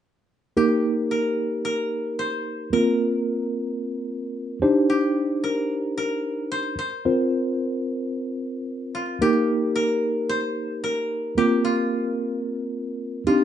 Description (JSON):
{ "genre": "pop", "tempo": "111 BPM", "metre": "4/4", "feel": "straight", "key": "Eb major", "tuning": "A4 = 439 Hz", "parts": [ { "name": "koto", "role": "melody", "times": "0.6-13.4 s", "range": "F4 to C5", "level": "-28 LUFS", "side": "left 1 dB", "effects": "slapback echo" }, { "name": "mellow tine electric piano", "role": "accompaniment", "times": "0.6-13.4 s", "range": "Bb3 to C5", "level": "-22 LUFS", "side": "equal", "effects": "medium stereo tremolo" } ], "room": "moderate studio reverb, RT60 0.5 s", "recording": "rough home demo mix, nothing above 10.4 kHz", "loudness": "-22 LUFS", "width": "side -10 dB against mid", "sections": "0.6-9.2 A section; 9.2-13.4 B section", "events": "none", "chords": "0.6 Eb; 2.7 Bbsus2; 4.6 Cmadd9; 7.1 Bbsus2; 9.2 Eb; 11.4 Bbsus2", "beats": "| 0.57 1.11 1.65 2.19 | 2.73 3.27 3.81 4.35 | 4.89 5.43 5.97 6.51 | 7.05 7.59 8.13 8.68 | 9.21 9.76 10.30 10.84 | 11.38 11.92 12.46 13.00" }